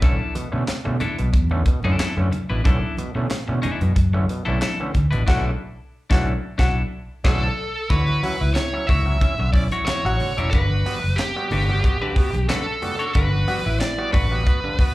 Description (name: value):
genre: funk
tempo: 91 BPM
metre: 4/4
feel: straight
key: B minor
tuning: A4 = 441 Hz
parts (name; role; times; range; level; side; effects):
- clean electric guitar; accompaniment; 0.0-14.7 s; D4 to D5; -29 LUFS; left 3 dB; spring reverb, slapback echo
- auto-wah clav; stabs; 0.0-14.9 s; G2 to F#4; -29 LUFS; right 2 dB; overdrive, slapback echo
- vintage muted fingered electric bass; bass; 0.0-14.8 s; E1 to B2; -21 LUFS; equal; none
- tight funk drum kit; drums; 0.0-14.9 s; crash cymbal, handclaps, hi-hat, kick drum, snare drum; -21 LUFS; equal; none
- congas; percussion; 0.2-14.6 s; none; -32 LUFS; right 2 dB; none
- breathy tenor saxophone; second line; 5.3-14.1 s; E4 to F#4; -28 LUFS; left 2 dB; slapback echo
- nasal lead guitar with a parked wah; melody; 7.3-14.9 s; G4 to E5; -25 LUFS; right 1 dB; overdrive, slapback echo
room: little or no reverb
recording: live gig heard through the venue's PA, club reverb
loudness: -19 LUFS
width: side -18 dB against mid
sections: 0.0-7.9 A section; 7.9-14.9 B section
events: band accent 5.3-7.9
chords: 0.0 Bm11; 7.9 Dmaj9; 10.5 Gmaj7